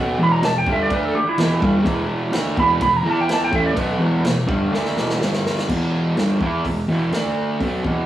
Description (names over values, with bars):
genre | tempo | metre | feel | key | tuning
garage rock duo or trio | 126 BPM | 4/4 | straight | E minor | A4 = 443 Hz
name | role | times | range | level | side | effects
fuzz guitar | riff | 0.0-8.1 s | E2 to E4 | -19 LUFS | equal | distortion
clean lap steel guitar | melody | 0.2-4.7 s | E4 to B5 | -21 LUFS | right 2 dB | none
vintage drum kit | drums | 0.4-8.0 s | crash cymbal, hi-hat, kick drum, snare drum | -26 LUFS | equal | none
room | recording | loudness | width
moderate small room reverb, RT60 0.5 s | rough rehearsal-room recording, studio reverb | -17 LUFS | side -12 dB against mid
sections
0.0-5.7 A section; 5.7-8.1 B section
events
electric slide guitar solo 0.0-5.7; drum fill 4.7-5.7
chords
0.0 Em; 5.2 G5; 5.7 Em; 7.1 D5